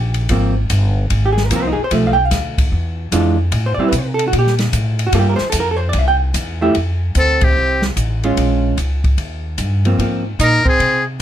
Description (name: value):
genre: jazz, small-group swing and bop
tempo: 149 BPM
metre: 4/4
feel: swing 65% on 8ths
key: unclear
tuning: A4 = 440 Hz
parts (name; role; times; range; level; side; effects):
- vintage hollow-body jazz guitar; accompaniment; 0.0-10.2 s; E3 to G5; -17 LUFS; right 2 dB; none
- upright bass; bass; 0.0-11.2 s; G1 to C3; -17 LUFS; equal; none
- open jazz drum kit; drums; 0.1-11.2 s; hi-hat, kick drum, ride cymbal, snare drum; -22 LUFS; equal; none
- trumpet with metal mute; melody; 7.2-7.8, 10.4-11.0 s; G4 to Bb4; -15 LUFS; left 3 dB; none
- breathy tenor saxophone; second line; 7.2-7.8, 10.4-11.0 s; C4 to Eb4; -19 LUFS; right 4 dB; none
room: little or no reverb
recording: close, detailed microphones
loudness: -14 LUFS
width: side -11 dB against mid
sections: 0.0-6.8 A section; 6.8-11.2 B section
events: band accent 7.4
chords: 0.3 Ab69; 1.9 Bm7b5; 2.7 E7b9; 3.5 Am7; 5.1 Gm9; 5.9 C; 6.8 Fadd9; 8.4 Bbm7; 9.2 Eb; 10.0 Ab69